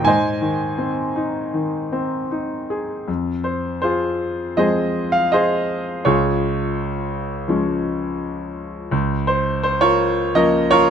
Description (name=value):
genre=classical, lyrical solo piano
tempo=81 BPM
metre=4/4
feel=uneven beats, rubato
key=Ab major, F minor from 3.1 s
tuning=A4 = 440 Hz
part: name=clear concert grand piano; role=solo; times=0.0-10.9 s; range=Db2 to Ab5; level=-18 LUFS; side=equal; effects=none
room=light reverb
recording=close, detailed microphones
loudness=-18 LUFS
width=side -8 dB against mid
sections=0.0-3.1 A section; 3.1-10.9 B section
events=none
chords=0.1 Ab; 3.1 Fm; 6.1 Db; 8.9 Bbm/Db